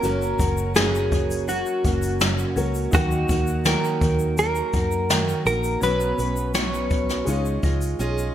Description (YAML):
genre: acoustic pop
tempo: 83 BPM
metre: 4/4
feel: straight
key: F# major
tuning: A4 = 439 Hz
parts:
  - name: direct-recorded clean electric guitar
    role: melody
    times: 0.0-8.3 s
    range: F#4 to C#5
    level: -25 LUFS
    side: equal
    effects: analog chorus, digital delay
  - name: clear upright piano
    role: accompaniment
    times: 0.0-8.3 s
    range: G#3 to C#5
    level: -32 LUFS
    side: left 4 dB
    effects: analog chorus
  - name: picked steel-string acoustic guitar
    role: accompaniment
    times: 0.0-8.3 s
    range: F#2 to D#5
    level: -26 LUFS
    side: right 3 dB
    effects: none
  - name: vintage muted fingered electric bass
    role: bass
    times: 0.0-8.3 s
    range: F#1 to F#2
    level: -26 LUFS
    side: equal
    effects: none
  - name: jazz brush drum kit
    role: drums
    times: 0.0-8.0 s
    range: kick drum, shaker, snare drum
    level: -24 LUFS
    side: left 1 dB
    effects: gated reverb
  - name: egg shaker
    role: percussion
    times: 0.0-8.3 s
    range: none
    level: -40 LUFS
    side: left 8 dB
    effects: none
room: moderate lush hall reverb, RT60 1.7 s, small room ambience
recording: bright 1980s-style digital production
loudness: -20 LUFS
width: side -11 dB against mid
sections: 0.0-8.3 A section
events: drum fill 8.0-8.3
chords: 0.0 F#; 2.9 D#m; 5.8 Bsus2; 7.3 C#add9